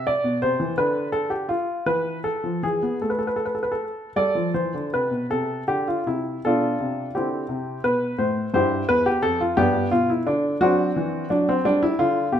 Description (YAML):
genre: classical, baroque-style suite movement for grand piano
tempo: 52-59 BPM (dotted quarters)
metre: 6/8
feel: rubato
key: A minor, C major from 5.3 s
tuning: A4 = 437 Hz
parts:
  - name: warm baby grand piano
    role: solo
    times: 0.0-12.4 s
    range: E2 to D5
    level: -20 LUFS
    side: equal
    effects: none
room: wet stone room reverb, RT60 1.3 s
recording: minimal, uncompressed stereo recording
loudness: -20 LUFS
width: side -9 dB against mid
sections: 0.0-5.3 A section; 5.3-12.4 A section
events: none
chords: 0.0 Cmaj9; 0.8 N.C.; 1.9 E5; 3.0 Am; 5.3 C69; 6.4 Fmaj13; 7.5 C; 9.6 G; 10.6 D7; 11.6 G5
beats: | 0.78 1.86 | 3.01 4.16 | 5.30 6.44 | 7.50 8.54 | 9.57 10.61 | 11.65